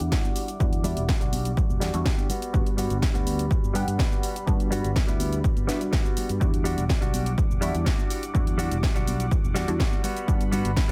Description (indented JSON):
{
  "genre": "filtered disco house",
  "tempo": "124 BPM",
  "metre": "4/4",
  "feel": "straight",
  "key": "unclear",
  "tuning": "A4 = 440 Hz",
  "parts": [
    { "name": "funky polysynth comp", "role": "accompaniment", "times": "0.0-10.9 s", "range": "G3 to F#5", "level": "-35 LUFS", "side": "equal", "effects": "chorus, phaser, sidechain pumping, low-pass filter" },
    { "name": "bright chamber string section", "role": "sustained chords", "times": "0.0-10.9 s", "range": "G3 to D6", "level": "-41 LUFS", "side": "equal", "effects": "vintage 12-bit sampler grit, sidechain pumping, low-pass filter" },
    { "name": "fingered electric bass", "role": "bass", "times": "0.0-10.9 s", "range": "E1 to G2", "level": "-31 LUFS", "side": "equal", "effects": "tube saturation, sidechain pumping, low-pass filter" },
    { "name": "house drum kit", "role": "drums", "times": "0.0-10.9 s", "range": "hi-hat, shaker, snare drum", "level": "-36 LUFS", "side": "equal", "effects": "sidechain pumping on hats, sidechain pumping on perc" },
    { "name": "tambourine and congas", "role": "percussion", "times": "0.0-10.9 s", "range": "none", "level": "-41 LUFS", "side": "equal", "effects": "none" },
    { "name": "direct-recorded clean electric guitar", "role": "riff", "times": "0.1-10.9 s", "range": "G3 to G4", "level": "-34 LUFS", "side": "equal", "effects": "sidechain pumping, low-pass filter" },
    { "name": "electronic kick drum", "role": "drums", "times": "0.1-10.9 s", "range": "none", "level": "-27 LUFS", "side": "equal", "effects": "none" }
  ],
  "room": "digital ambience",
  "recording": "none",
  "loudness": "-25 LUFS",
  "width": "mono",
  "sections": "0.0-10.9 A section",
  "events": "filter sweep 0.0-10.9",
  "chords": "0.0 Em9; 2.3 Gmaj7; 6.4 Em9; 10.0 Gmaj7"
}